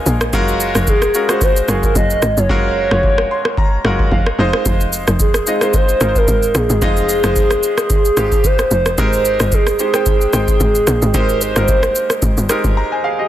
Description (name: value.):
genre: amapiano.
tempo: 111 BPM.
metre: 4/4.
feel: swing 55% on 16ths.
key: unclear.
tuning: A4 = 439 Hz.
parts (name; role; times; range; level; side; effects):
hollow clarinet-like synth lead; melody; 0.0-12.5 s; Ab4 to Eb5; -17 LUFS; right 1 dB; chorus, tape echo.
clear baby grand piano; accompaniment; 0.0-13.3 s; Ab3 to C6; -20 LUFS; right 1 dB; none.
tight log drum bass; bass; 0.0-12.8 s; F1 to Bb1; -18 LUFS; equal; none.
booming analog drum machine; drums; 0.1-12.8 s; kick drum, rim click, shaker; -17 LUFS; equal; none.
room: light reverb.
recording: dense, heavily limited modern master.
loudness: -12 LUFS.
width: side -12 dB against mid.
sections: 0.0-13.3 A section.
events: grand piano fill 0.0-0.3, 3.0-4.7; hi-hats muted 2.5-4.7; break 12.8-13.3.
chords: 0.3 Gbmaj9; 4.4 Fm7; 9.0 Abmaj9.